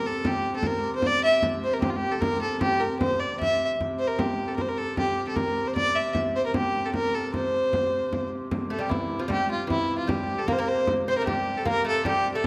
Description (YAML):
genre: medieval dance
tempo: 152 BPM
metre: 3/4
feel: straight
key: C mixolydian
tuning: A4 = 438 Hz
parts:
  - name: warm fiddle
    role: melody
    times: 0.0-12.5 s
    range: E4 to E5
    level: -28 LUFS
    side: equal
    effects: none
  - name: rich hurdy-gurdy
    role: drone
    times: 0.0-12.5 s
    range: C3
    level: -37 LUFS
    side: equal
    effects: none
  - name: frame drum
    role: percussion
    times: 0.1-12.5 s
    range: none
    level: -32 LUFS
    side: equal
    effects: none
  - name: lute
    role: second line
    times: 8.7-12.4 s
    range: E3 to C4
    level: -34 LUFS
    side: equal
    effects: none
room: wet recital hall reverb, RT60 1.6 s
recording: none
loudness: -26 LUFS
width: mono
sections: 0.0-8.5 A section; 8.5-12.5 A section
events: none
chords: none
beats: | 0.25 0.64 1.03 | 1.43 1.82 2.22 | 2.61 3.00 3.40 | 3.79 4.19 4.58 | 4.97 5.37 5.76 | 6.15 6.55 6.94 | 7.33 7.73 8.12 | 8.51 8.91 9.30 | 9.69 10.09 10.48 | 10.87 11.26 11.65 | 12.05 12.44